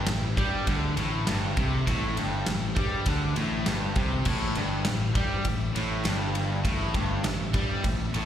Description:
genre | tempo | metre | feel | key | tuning
classic rock | 100 BPM | 4/4 | straight | A minor | A4 = 439 Hz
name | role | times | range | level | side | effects
bright tonewheel organ | sustained chords | 0.0-8.3 s | C4 to E5 | -43 LUFS | right 1 dB | none
crunchy overdriven guitar | riff | 0.0-8.3 s | G2 to G3 | -33 LUFS | left 7 dB | slapback echo
fuzz guitar | riff | 0.0-8.3 s | G2 to G3 | -32 LUFS | equal | distortion, slapback echo
overdriven electric guitar | riff | 0.0-8.3 s | G2 to G3 | -34 LUFS | right 8 dB | slapback echo
growling fingered electric bass | bass | 0.0-8.3 s | G1 to G2 | -30 LUFS | equal | overdrive
huge arena drum kit | drums | 0.1-8.3 s | crash cymbal, kick drum, ride cymbal, snare drum | -30 LUFS | equal | none
group handclap | percussion | 0.1-7.4 s | none | -43 LUFS | right 2 dB | none
room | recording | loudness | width
light reverb, small room ambience | live gig heard through the venue's PA, recital hall reverb | -24 LUFS | side -10 dB against mid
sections
0.0-8.3 A section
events
none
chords
0.0 Am

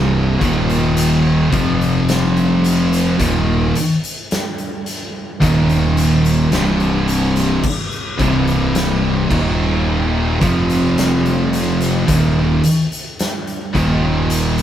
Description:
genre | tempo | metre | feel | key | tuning
stoner and doom metal | 54 BPM | 4/4 | straight | unclear | A4 = 442 Hz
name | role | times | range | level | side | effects
high-gain distorted guitar | riff | 0.0-14.6 s | C2 to F3 | -21 LUFS | left 1 dB | distortion
thick fuzz guitar | riff | 0.0-14.6 s | C2 to F3 | -20 LUFS | left 4 dB | distortion
thick fuzz guitar | riff | 0.0-14.6 s | C2 to F3 | -18 LUFS | right 3 dB | distortion
fuzz fingered electric bass | bass | 0.0-14.6 s | C1 to F1 | -21 LUFS | left 1 dB | overdrive
oversized low-tuned drum kit | drums | 0.4-14.6 s | crash cymbal, hi-hat, kick drum, snare drum | -22 LUFS | left 1 dB | none
room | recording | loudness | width
moderate stone room reverb, RT60 1.1 s | band playing live in one room | -14 LUFS | side -10 dB against mid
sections
0.0-14.6 A section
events
none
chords
0.4 Eb5; 1.5 F5; 3.2 Eb5; 6.5 C5; 9.3 Eb5; 10.4 F5; 12.1 Eb5

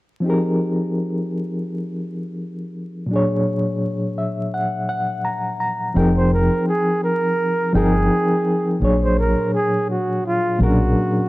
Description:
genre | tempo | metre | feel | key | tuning
hip hop | 84 BPM | 4/4 | swing 55% on 16ths | F minor | A4 = 439 Hz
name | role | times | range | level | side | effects
bright reed electric piano | accompaniment | 0.2-11.3 s | Bb2 to Bb5 | -20 LUFS | left 1 dB | medium tremolo, low-pass filter
deep dub fingered electric bass | bass | 6.0-10.9 s | F1 to B1 | -19 LUFS | equal | none
breathy flugelhorn | melody | 6.2-11.3 s | F4 to C5 | -20 LUFS | right 2 dB | low-pass filter
room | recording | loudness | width
light reverb, studio reverb | vinyl crackle | -18 LUFS | side -19 dB against mid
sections
0.2-6.0 A section; 6.0-11.3 B section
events
reed electric piano fill 3.8-6.0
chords
0.2 Fm11; 3.1 Bb7alt; 6.0 Fm11; 8.8 Bb7alt

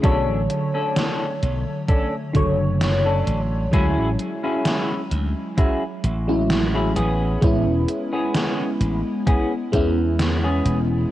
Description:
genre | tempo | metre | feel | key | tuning
vaporwave | 65 BPM | 4/4 | swing 54% on 16ths | unclear | A4 = 441 Hz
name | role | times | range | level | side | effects
FM electric piano with soft pad layer | accompaniment | 0.0-11.1 s | D3 to C#5 | -23 LUFS | equal | phaser, analog chorus, tape echo
semi-hollow electric guitar | riff | 0.0-10.8 s | B3 to A4 | -27 LUFS | left 1 dB | lush chorus, tape echo
slap bass | bass | 0.0-11.0 s | E1 to E2 | -22 LUFS | equal | none
electronic kick drum | drums | 0.0-9.9 s | none | -19 LUFS | equal | overdrive
gated 80s digital drum machine | drums | 0.0-10.9 s | hi-hat, snare drum | -26 LUFS | equal | gated reverb, gated reverb snare, overdrive
room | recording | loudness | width
light reverb | worn, warbling old tape, cassette tape, warbly pitch drift | -19 LUFS | side -14 dB against mid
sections
0.0-11.1 A section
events
none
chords
0.0 Bm9; 3.7 Dmaj9#11; 7.0 Amaj9

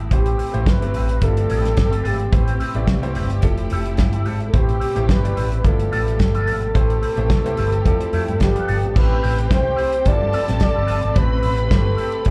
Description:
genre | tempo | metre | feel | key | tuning
disco | 108 BPM | 4/4 | straight | A minor | A4 = 444 Hz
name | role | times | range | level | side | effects
clear grand piano | accompaniment | 0.0-12.3 s | F3 to G5 | -33 LUFS | equal | slapback echo
electric guitar with an envelope filter | accompaniment | 0.0-12.3 s | A3 to E5 | -33 LUFS | equal | wah, analog chorus, slapback echo
warm symphonic string section | sustained chords | 0.0-12.3 s | B2 to A4 | -33 LUFS | equal | none
picked electric bass with an envelope filter | bass | 0.0-12.3 s | F1 to G2 | -23 LUFS | equal | none
breathy flugelhorn | melody | 0.1-12.3 s | G4 to D5 | -26 LUFS | equal | none
warm soul drum kit | drums | 0.1-12.3 s | crash cymbal, hi-hat, kick drum, snare drum | -22 LUFS | equal | none
dark studio violin section | second line | 8.9-12.3 s | G4 to C6 | -31 LUFS | equal | slapback echo
room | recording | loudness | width
small room reverb | live gig heard through the venue's PA, club reverb | -19 LUFS | mono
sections
0.0-9.0 A section; 9.0-12.3 B section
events
grand piano fill 7.3-9.0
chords
0.1 Am9; 1.2 G13; 2.3 Am9; 3.4 Fmaj9; 4.5 Am9; 5.6 G13; 6.7 Am9; 7.8 Fmaj9; 8.4 G9; 9.0 Am9; 10.1 G13; 11.2 Am9

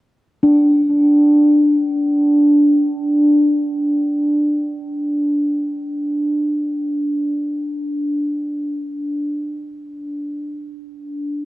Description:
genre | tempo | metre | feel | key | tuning
world meditative, free-time meditation music | free time | none | none | unclear | A4 = 440 Hz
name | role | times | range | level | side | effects
bronze singing bowl | solo | 0.4-7.8 s | D4 | -16 LUFS | equal | tape echo
room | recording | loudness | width
wet huge ambient reverb, RT60 8.1 s | worn, warbling old tape, cassette tape, warbly pitch drift | -15 LUFS | side -17 dB against mid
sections
0.3-11.5 A section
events
none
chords
none

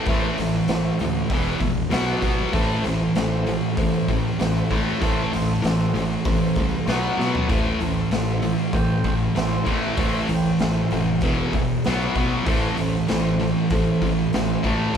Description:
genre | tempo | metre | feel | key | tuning
garage rock duo or trio | 97 BPM | 4/4 | straight | A minor | A4 = 440 Hz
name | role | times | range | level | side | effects
thick fuzz guitar | riff | 0.0-15.0 s | E2 to B3 | -21 LUFS | equal | distortion
combo organ | sustained chords | 0.1-15.0 s | E4 to G5 | -32 LUFS | equal | phaser
growling picked electric bass | bass | 0.1-15.0 s | E1 to B2 | -30 LUFS | equal | overdrive
raw garage drum kit | drums | 0.1-15.0 s | hi-hat, kick drum, snare drum, toms | -26 LUFS | equal | none
room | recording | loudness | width
moderate large studio reverb, RT60 1.2 s | band playing live in one room | -19 LUFS | side -8 dB against mid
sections
0.0-15.0 A section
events
drum fill 7.2-7.5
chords
0.0 Am; 1.3 E5; 1.9 B5; 2.5 Am; 6.9 B5; 7.5 Am; 11.2 E5; 11.8 B5; 12.5 Am

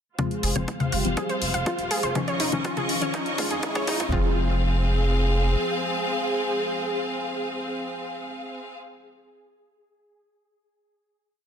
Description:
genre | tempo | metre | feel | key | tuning
melodic techno | 122 BPM | 4/4 | straight | F minor | A4 = 440 Hz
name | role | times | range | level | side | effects
analog synth brass | melody | 0.2-8.7 s | F3 to Ab4 | -32 LUFS | equal | chorus, sidechain pumping, tape echo
bright studio string section | sustained chords | 0.2-8.7 s | C4 to Db6 | -30 LUFS | equal | sidechain pumping, low-pass filter
wide unison pluck | arpeggios | 0.2-4.4 s | Eb4 to F5 | -30 LUFS | right 1 dB | cassette tape, sidechain pumping, digital delay
synth brass stab | stabs | 0.2-8.7 s | Eb3 to Db4 | -32 LUFS | left 3 dB | chorus, sidechain pumping, digital delay
electronic hi-hat and congas | drums | 0.2-4.1 s | none | -29 LUFS | left 3 dB | sidechain pumping on hats, sidechain pumping on perc
electronic kick drum | drums | 0.2-4.2 s | none | -29 LUFS | equal | overdrive, high-pass filter on kick
riser | sound effects | 1.6-4.1 s | none | -36 LUFS | equal | none
round analog bass | bass | 0.4-5.6 s | Eb1 to F2 | -25 LUFS | equal | sidechain pumping
room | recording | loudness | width
light reverb | dense, heavily limited modern master, high-pass filter | -23 LUFS | side -8 dB against mid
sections
0.2-4.1 build; 4.1-8.1 final chord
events
build-up 0.2-4.1; filter sweep on synth pluck 0.2-4.1; filter sweep on analog polysynth 0.2-4.1; filter sweep on synth stab 0.2-4.1; filter sweep 0.2-4.1; drum fill 2.2-4.1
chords
0.2 Fm; 2.2 Dbadd9/F; 4.1 Fm

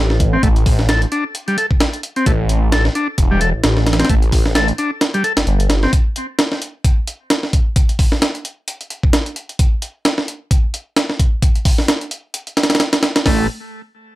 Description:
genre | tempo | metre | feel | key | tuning
breakbeat, breaks | 131 BPM | 4/4 | swing 57% on 16ths | A minor | A4 = 440 Hz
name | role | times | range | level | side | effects
phased detuned saw bass | bass | 0.0-5.9, 13.3-13.5 s | E1 to A1 | -16 LUFS | equal | phaser
breakbeat sampler-style drum kit | drums | 0.1-13.4 s | hi-hat, kick drum, snare drum | -15 LUFS | equal | none
combo organ | riff | 0.3-5.9, 13.3-13.5 s | G3 to A4 | -20 LUFS | left 1 dB | digital delay
room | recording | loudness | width
little or no reverb | none | -14 LUFS | side -17 dB against mid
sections
0.0-13.3 A section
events
none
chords
0.0 A7(no3); 5.9 N.C.

